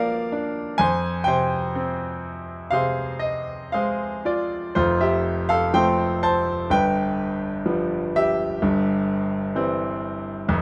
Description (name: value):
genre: classical, lyrical solo piano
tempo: 57-66 BPM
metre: 4/4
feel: rubato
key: F dorian, F major from 4.8 s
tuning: A4 = 440 Hz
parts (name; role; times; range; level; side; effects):
- bright grand piano; solo; 0.0-10.6 s; F1 to A5; -23 LUFS; equal; none
room: light reverb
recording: none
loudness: -23 LUFS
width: mono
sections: 0.0-4.8 A section; 4.8-10.6 B section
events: none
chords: 0.0 Bb; 0.8 Fmadd9; 4.8 F; 6.7 G7; 8.6 C/G